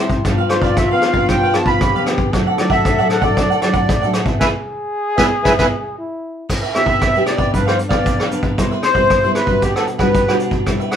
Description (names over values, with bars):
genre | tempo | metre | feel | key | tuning
samba and choro | 115 BPM | 4/4 | straight | unclear | A4 = 440 Hz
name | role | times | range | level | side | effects
breathy trombone | second line | 0.0-6.5 s | E4 to A4 | -21 LUFS | left 3 dB | none
cavaquinho | accompaniment | 0.0-11.0 s | D4 to G5 | -23 LUFS | right 3 dB | none
nylon-string guitar | accompaniment | 0.0-11.0 s | G2 to G#4 | -21 LUFS | equal | none
vintage brush drum kit | drums | 0.1-11.0 s | crash cymbal, hi-hat, kick drum, rim click, snare drum | -18 LUFS | equal | none
accordion | melody | 0.5-11.0 s | G4 to B5 | -18 LUFS | equal | light tremolo tuning
room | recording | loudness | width
wet studio reverb, RT60 0.5 s | band playing live in one room | -14 LUFS | side -8 dB against mid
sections
0.0-6.5 A section; 6.5-11.0 B section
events
band accent 4.4-6.5; drum fill 6.0-6.5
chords
0.3 G7; 2.3 D; 4.4 E; 6.5 Em7; 7.5 G7; 8.6 Cmaj7; 9.6 Gmaj7/B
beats
| 0.25 0.77 1.29 1.81 | 2.33 2.85 3.37 3.89 | 4.41 4.93 5.46 5.98 | 6.50 7.02 7.54 8.06 | 8.58 9.10 9.62 10.15 | 10.67